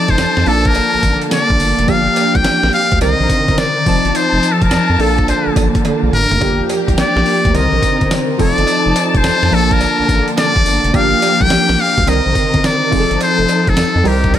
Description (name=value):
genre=R&B, new jack swing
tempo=106 BPM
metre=4/4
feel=swing 66% on 16ths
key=unclear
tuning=A4 = 439 Hz
part: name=trumpet with metal mute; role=melody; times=0.0-14.4 s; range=G4 to G5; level=-16 LUFS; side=left 2 dB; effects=ping-pong delay
part: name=warm analog keys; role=accompaniment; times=0.0-14.4 s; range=D3 to A5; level=-18 LUFS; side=right 1 dB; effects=chorus
part: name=dark chamber string section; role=sustained chords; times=0.0-14.4 s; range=C3 to A5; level=-20 LUFS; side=left 1 dB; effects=none
part: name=round analog bass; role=bass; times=0.1-14.4 s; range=F1 to F2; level=-18 LUFS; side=equal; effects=none
part: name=dusty soul sampler-style drum kit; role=drums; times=0.1-14.4 s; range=hi-hat, kick drum, snare drum, tambourine, toms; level=-18 LUFS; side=equal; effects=overdrive
part: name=cowbell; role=percussion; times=0.2-14.4 s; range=none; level=-30 LUFS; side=right 6 dB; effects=none
room=light reverb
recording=none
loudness=-11 LUFS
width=side -11 dB against mid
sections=0.0-14.4 A section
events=drum fill 5.8-6.4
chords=0.5 Bbmaj7; 1.9 Gm7; 3.0 Cm9; 3.9 F7; 5.0 Bbmaj7; 6.4 Gm7; 7.5 Cm9; 8.4 F7; 9.5 Bbmaj7; 10.9 Gm7; 12.1 Cm9; 12.9 F7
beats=0.19 0.75 1.32 | 1.89 2.45 3.02 3.58 | 4.15 4.71 5.28 5.85 | 6.41 6.98 7.54 8.11 | 8.68 9.24 9.81 10.38 | 10.94 11.51 12.07 12.64 | 13.21 13.77 14.34